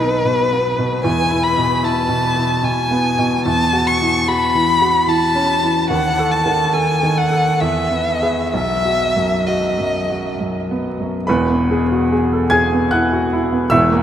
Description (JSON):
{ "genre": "classical, romantic duo for violin and grand piano", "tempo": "62-77 BPM", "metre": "3/4", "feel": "rubato", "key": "E major", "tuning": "A4 = 440 Hz", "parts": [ { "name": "rich violin", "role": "melody", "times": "0.0-10.4 s", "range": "B4 to C#6", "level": "-17 LUFS", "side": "left 2 dB", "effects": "none" }, { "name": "bright baby grand piano", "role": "accompaniment", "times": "0.0-14.0 s", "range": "E1 to G#6", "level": "-17 LUFS", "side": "right 1 dB", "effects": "none" } ], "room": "wet cathedral reverb, RT60 5.6 s", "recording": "in a vast, echoing space", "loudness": "-14 LUFS", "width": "side -10 dB against mid", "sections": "0.0-11.3 A section; 11.3-14.0 B section", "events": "none", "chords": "0.0 B; 1.0 E; 3.5 F#m7/E; 5.9 D#dim; 7.6 E; 8.5 B; 11.3 E" }